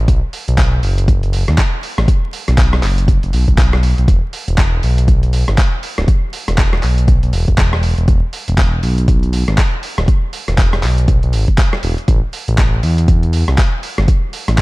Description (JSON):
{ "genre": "deep house", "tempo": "120 BPM", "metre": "4/4", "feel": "swing 60% on 16ths", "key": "unclear", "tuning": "A4 = 440 Hz", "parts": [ { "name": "smooth gliding synth bass", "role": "bass", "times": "0.0-14.6 s", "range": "D1 to E2", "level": "-14 LUFS", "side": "equal", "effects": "none" }, { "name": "dusty soul sampler-style drum kit", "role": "drums", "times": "0.1-14.6 s", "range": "handclaps, hi-hat, rim click", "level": "-22 LUFS", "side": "equal", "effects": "overdrive, studio ambience" }, { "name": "electronic kick drum", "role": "drums", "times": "0.1-14.6 s", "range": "none", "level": "-12 LUFS", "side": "equal", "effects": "studio ambience" } ], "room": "little or no reverb", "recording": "dark, warm production, vinyl crackle", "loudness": "-12 LUFS", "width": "side -22 dB against mid", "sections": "0.0-14.6 A section", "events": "none", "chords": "none" }